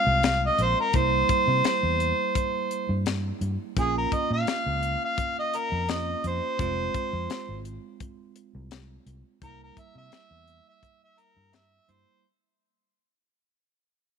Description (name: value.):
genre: straight-eighth soul blues.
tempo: 85 BPM.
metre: 4/4.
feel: straight.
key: unclear.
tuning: A4 = 437 Hz.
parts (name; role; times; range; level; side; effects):
mellow harmonica; melody; 0.0-12.2 s; Ab4 to F5; -25 LUFS; equal; overdrive.
bell-like tine electric piano; accompaniment; 0.0-12.2 s; G3 to F4; -34 LUFS; right 15 dB; fast stereo tremolo.
vintage muted fingered electric bass; bass; 0.1-12.0 s; F1 to C3; -29 LUFS; left 1 dB; none.
tight funk drum kit; drums; 0.2-12.1 s; hi-hat, kick drum, snare drum; -30 LUFS; left 4 dB; none.
room: light reverb, small room ambience.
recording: 1960s-style stereo.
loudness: -23 LUFS.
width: side -7 dB against mid.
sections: 0.0-12.2 A section.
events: fade-out 0.0-12.2; harmonica solo 0.0-12.2.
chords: 0.0 Fm; 0.9 C7; 3.8 Bbm; 6.6 Fm; 9.4 C7.